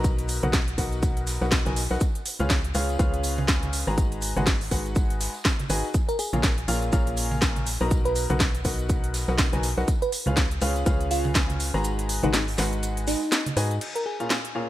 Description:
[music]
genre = piano house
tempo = 122 BPM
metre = 4/4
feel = swing 58% on 16ths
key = G# dorian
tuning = A4 = 439 Hz
[part]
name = clear grand piano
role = riff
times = 0.0-14.7 s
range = A#2 to A#5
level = -30 LUFS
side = left 1 dB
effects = sidechain pumping, low-pass filter, tape echo
[part]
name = organ-like FM bass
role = bass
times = 0.0-13.8 s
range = G#1 to G#2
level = -28 LUFS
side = equal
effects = sidechain pumping
[part]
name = electronic kick drum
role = drums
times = 0.0-11.5 s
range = none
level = -25 LUFS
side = equal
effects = small room ambience
[part]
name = house drum kit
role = drums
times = 0.0-14.5 s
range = crash cymbal, hi-hat, snare drum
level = -28 LUFS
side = equal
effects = small room ambience
[part]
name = shaker and snare drum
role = drums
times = 0.0-13.7 s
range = none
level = -40 LUFS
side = equal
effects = none
[part]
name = tambourine and congas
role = percussion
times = 0.0-13.8 s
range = none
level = -35 LUFS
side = right 2 dB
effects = none
[part]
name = bell-like FM electric piano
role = melody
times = 6.1-14.3 s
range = D#4 to B4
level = -30 LUFS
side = right 1 dB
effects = chorus, phaser, tape echo
[sound]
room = small room ambience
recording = dry, gritty hardware recording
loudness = -22 LUFS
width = side -14 dB against mid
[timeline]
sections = 0.0-13.8 A section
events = kick drops out 11.8-13.8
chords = 0.0 Bmaj7; 2.0 C#7; 4.0 G#m7; 5.9 A#m7; 7.7 Bmaj7; 9.9 C#7; 11.8 G#m7; 13.8 A#m7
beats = | 0.04 0.53 1.03 1.52 | 2.01 2.50 2.99 3.48 | 3.98 4.47 4.96 5.45 | 5.94 6.44 6.93 7.42 | 7.91 8.40 8.89 9.39 | 9.88 10.37 10.86 11.35 | 11.85 12.34 12.83 13.32 | 13.81 14.30

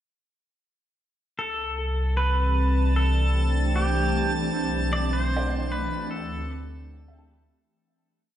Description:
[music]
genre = ambient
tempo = 76 BPM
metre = 4/4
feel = straight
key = C major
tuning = A4 = 442 Hz
[part]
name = pedal steel guitar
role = melody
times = 1.4-7.3 s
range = G4 to D5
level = -29 LUFS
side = right 1 dB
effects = diffuse ambient delay
[part]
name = ethereal airy pad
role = sustained chords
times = 2.5-7.7 s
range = E3 to G4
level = -31 LUFS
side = equal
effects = ensemble chorus, built-in reverb
[part]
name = warm sub bass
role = bass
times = 1.4-7.7 s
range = B1 to D2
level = -25 LUFS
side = equal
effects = none
[part]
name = overtone-sweeping drone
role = drone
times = 2.2-7.8 s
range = G3 to C4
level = -34 LUFS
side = right 1 dB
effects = chorus, built-in reverb
[part]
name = drifting glass-harmonics texture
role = texture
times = 2.0-7.7 s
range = A5 to A6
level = -35 LUFS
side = equal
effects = chorus, built-in reverb
[part]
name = felt-muted upright piano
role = arpeggios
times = 1.8-8.1 s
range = A4 to A5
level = -41 LUFS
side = right 1 dB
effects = diffuse ambient delay
[sound]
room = moderate lush hall reverb, RT60 2.7 s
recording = cassette tape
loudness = -22 LUFS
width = side -11 dB against mid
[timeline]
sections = 1.4-7.7 A section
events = fade-in on ambient pad 1.4-7.7; fade-in on felt piano 1.4-7.7; fade-out 4.5-7.7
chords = 1.4 C69; 4.5 Bm7; 6.1 D9sus4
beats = | 1.38 2.17 2.95 3.74 | 4.53 5.32 6.11 6.90

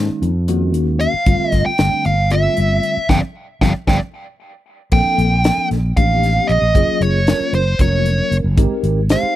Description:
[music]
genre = electric jazz fusion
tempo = 230 BPM (eighths)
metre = 7/8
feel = straight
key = unclear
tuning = A4 = 440 Hz
[part]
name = bell-like tine electric piano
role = accompaniment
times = 0.0-9.4 s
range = D3 to C5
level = -22 LUFS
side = left 3 dB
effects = medium stereo tremolo, lush chorus
[part]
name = fretless electric bass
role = bass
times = 0.0-9.3 s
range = F1 to F2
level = -17 LUFS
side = equal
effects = none
[part]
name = crisp fusion drum kit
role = drums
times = 0.2-9.2 s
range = crash cymbal, hi-hat, kick drum, snare drum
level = -17 LUFS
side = equal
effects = none
[part]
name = dark smooth lead guitar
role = melody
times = 1.0-9.4 s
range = C5 to G5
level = -19 LUFS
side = equal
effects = overdrive
[part]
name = silver concert flute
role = second line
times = 1.0-9.4 s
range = C5 to G5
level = -25 LUFS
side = right 14 dB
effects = none
[sound]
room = little or no reverb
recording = dry, close 1970s-style studio recording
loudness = -14 LUFS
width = side -14 dB against mid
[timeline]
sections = 0.0-4.9 A section; 4.9-9.4 B section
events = band accent 3.1-4.9; drum fill 4.1-4.9; tine electric piano fill 4.1-4.9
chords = 0.0 Ab9sus4; 1.3 G9sus4; 4.9 Bbmaj9; 6.8 Gbmaj9; 8.6 Abmaj9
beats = 0.23 0.49 0.75 1.02 | 1.28 1.54 1.80 2.06 2.32 2.58 2.84 | 3.10 3.37 3.63 3.89 4.15 4.41 4.67 | 4.93 5.19 5.45 5.71 5.97 6.23 6.50 | 6.75 7.02 7.28 7.54 7.80 8.06 8.32 | 8.58 8.84 9.10

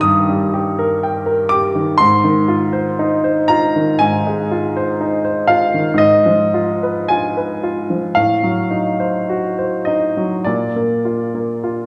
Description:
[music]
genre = classical, romantic nocturne for solo piano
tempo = 50-62 BPM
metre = 4/4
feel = rubato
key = unclear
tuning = A4 = 440 Hz
[part]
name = clear baby grand piano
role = solo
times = 0.0-11.9 s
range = G2 to Eb6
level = -16 LUFS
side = equal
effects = none
[sound]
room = wet recital hall reverb, RT60 1.5 s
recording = recorded in a church or concert hall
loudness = -16 LUFS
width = mono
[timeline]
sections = 0.0-11.9 A section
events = none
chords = 0.0 Eb/G; 2.0 Fm7/Ab; 6.0 Fm7b5/Ab; 8.2 Adim7; 10.5 Bb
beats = 0.02 1.02 | 1.99 2.98 4.00 4.99 | 5.99 7.10 8.15 9.28 | 10.45 11.63

